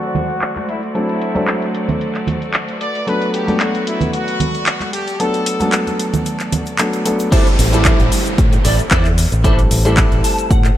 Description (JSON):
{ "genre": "nu-disco, nu disco", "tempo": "113 BPM", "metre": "4/4", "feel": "swing 54% on 16ths", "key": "A dorian", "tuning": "A4 = 440 Hz", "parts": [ { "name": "brilliant trumpet section", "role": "melody", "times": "0.0-6.0 s", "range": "E4 to D5", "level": "-24 LUFS", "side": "left 2 dB", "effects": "tape echo" }, { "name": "warm grand piano", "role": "accompaniment", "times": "0.0-10.8 s", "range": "F#3 to A4", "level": "-21 LUFS", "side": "equal", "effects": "low-pass filter, slapback echo" }, { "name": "rich studio string section", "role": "sustained chords", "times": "0.0-7.3 s", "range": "A3 to D5", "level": "-26 LUFS", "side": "equal", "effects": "sidechain pumping" }, { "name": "house drum kit", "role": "drums", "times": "0.0-10.8 s", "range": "crash cymbal, handclaps, hi-hat, shaker", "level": "-21 LUFS", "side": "left 1 dB", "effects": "studio reverb" }, { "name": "tube shaker and congas", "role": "percussion", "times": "0.0-7.3 s", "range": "none", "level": "-23 LUFS", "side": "right 3 dB", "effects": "none" }, { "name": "clean electric guitar", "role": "riff", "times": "7.3-10.8 s", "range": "E4 to A5", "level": "-21 LUFS", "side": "right 1 dB", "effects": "ensemble chorus, slapback echo" }, { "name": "electronic kick drum", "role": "drums", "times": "7.3-10.6 s", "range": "none", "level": "-15 LUFS", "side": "equal", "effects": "studio reverb" }, { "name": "downlifter", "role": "sound effects", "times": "7.3-10.8 s", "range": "none", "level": "-25 LUFS", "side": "right 1 dB", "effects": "none" }, { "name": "fingered electric bass with an envelope filter", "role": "bass", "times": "7.6-10.7 s", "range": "A1 to A2", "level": "-16 LUFS", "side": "equal", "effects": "none" } ], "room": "light reverb, small room reverb", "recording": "low-pass filter", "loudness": "-14 LUFS", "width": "side -12 dB against mid", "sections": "0.0-7.3 A section; 7.3-10.8 B section", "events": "filter sweep on grand piano 0.0-7.3; filter sweep on string section 0.0-7.3; filter sweep 0.0-7.3; drop 7.3-10.8; clean electric guitar fill 10.0-10.8", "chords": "0.0 D7; 2.8 Bm7; 7.3 Am7" }